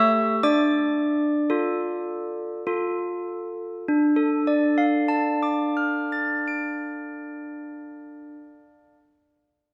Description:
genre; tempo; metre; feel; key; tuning
classical, tune for handbells; 48-58 BPM; 3/4; straight; D minor; A4 = 444 Hz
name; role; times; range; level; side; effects
handbells; solo; 0.0-9.0 s; A3 to D7; -24 LUFS; equal; none
room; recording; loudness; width
wet concert hall reverb, RT60 2.1 s; none; -24 LUFS; mono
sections
0.0-3.9 A section; 3.9-7.5 B section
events
slowing down 0.0-3.9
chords
0.4 Dm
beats
| 0.42 1.51 2.66 | 3.88 5.09 6.30

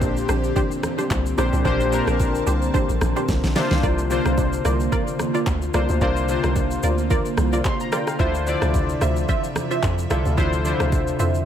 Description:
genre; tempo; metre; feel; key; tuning
amapiano; 110 BPM; 4/4; swing 55% on 16ths; unclear; A4 = 440 Hz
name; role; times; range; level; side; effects
warm analog keys; accompaniment; 0.0-11.5 s; Bb2 to C6; -24 LUFS; left 3 dB; chorus
airy breathy pad; sustained chords; 0.0-11.5 s; C3 to A5; -28 LUFS; right 2 dB; chorus
punchy chord stab; stabs; 0.0-11.4 s; D4 to E5; -28 LUFS; right 2 dB; chorus, ping-pong delay
hollow log drum bass; bass; 0.0-11.4 s; Bb1 to F2; -23 LUFS; equal; none
smooth R&B drum kit; drums; 0.0-11.5 s; handclaps, hi-hat, kick drum, rim click, shaker, snare drum; -25 LUFS; equal; none
bongos and congas; percussion; 0.0-11.1 s; none; -34 LUFS; right 5 dB; none
room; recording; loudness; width
light reverb; none; -19 LUFS; side -9 dB against mid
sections
0.0-11.5 A section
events
drum fill 3.3-3.8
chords
0.0 Bb69; 3.6 C9sus4; 8.2 Dm9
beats
0.01 0.56 1.10 | 1.65 2.20 2.74 3.29 | 3.83 4.38 4.92 5.47 | 6.01 6.56 7.11 7.65 | 8.20 8.74 9.29 9.83 | 10.38 10.92

